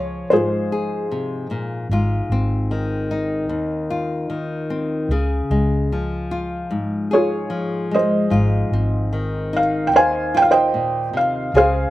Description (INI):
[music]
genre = acoustic folk-pop ballad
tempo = 75 BPM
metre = 4/4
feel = straight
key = Ab major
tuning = A4 = 440 Hz
[part]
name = felt-muted upright piano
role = melody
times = 0.0-1.9, 7.1-11.9 s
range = F4 to Ab5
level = -18 LUFS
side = right 1 dB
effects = slapback echo
[part]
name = nylon-string guitar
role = accompaniment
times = 0.0-11.9 s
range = Eb2 to Ab4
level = -22 LUFS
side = left 2 dB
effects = none
[part]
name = vintage muted fingered electric bass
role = bass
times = 0.0-11.8 s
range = Ab1 to Eb2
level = -22 LUFS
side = equal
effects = none
[sound]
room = little or no reverb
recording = recorded outdoors, with no room sound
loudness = -18 LUFS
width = side -15 dB against mid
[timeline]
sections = 0.0-11.9 A section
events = none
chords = 0.0 Dbmaj7; 1.9 Ab6; 5.1 Db; 8.3 Ab6